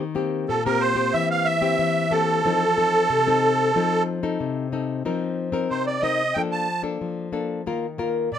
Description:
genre	samba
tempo	92 BPM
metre	4/4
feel	straight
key	unclear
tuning	A4 = 441 Hz
part	nylon-string guitar	accompaniment	0.0-8.4 s	Bb2 to Bb4	-24 LUFS	left 5 dB	none
part	musette accordion	melody	0.5-8.4 s	A4 to A5	-20 LUFS	right 2 dB	none
room	light reverb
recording	minimal, uncompressed stereo recording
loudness	-20 LUFS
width	side -9 dB against mid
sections	0.0-8.4 A section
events	none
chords	0.0 Eb6; 1.1 C7/E; 2.4 F7; 5.1 F7sus4; 6.4 Bbmaj7/F; 7.7 Ebsus2

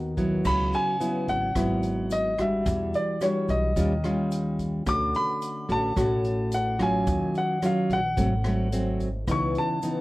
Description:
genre	bossa nova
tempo	109 BPM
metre	4/4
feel	straight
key	C# minor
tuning	A4 = 445 Hz
part	nylon-string guitar	accompaniment	0.0-10.0 s	G#2 to A#4	-26 LUFS	equal	none
part	upright bass	bass	0.0-9.5 s	G#1 to E2	-30 LUFS	equal	none
part	swinging big-band drum kit	drums	0.2-10.0 s	crash cymbal, hi-hat, kick drum, rim click	-34 LUFS	equal	none
part	egg shaker	percussion	0.2-10.0 s	none	-52 LUFS	right 4 dB	none
part	warm baby grand piano	melody	0.5-10.0 s	C#5 to D6	-28 LUFS	equal	none
room	moderate small room reverb, RT60 0.5 s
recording	worn, warbling old tape, cassette tape, warbly pitch drift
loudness	-23 LUFS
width	side -18 dB against mid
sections	0.5-10.0 A section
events	none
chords	0.5 C#m7; 2.7 Em9; 3.8 D#9; 4.9 Dmaj7; 7.1 D#m9; 8.2 G#7b9; 9.3 C#m9

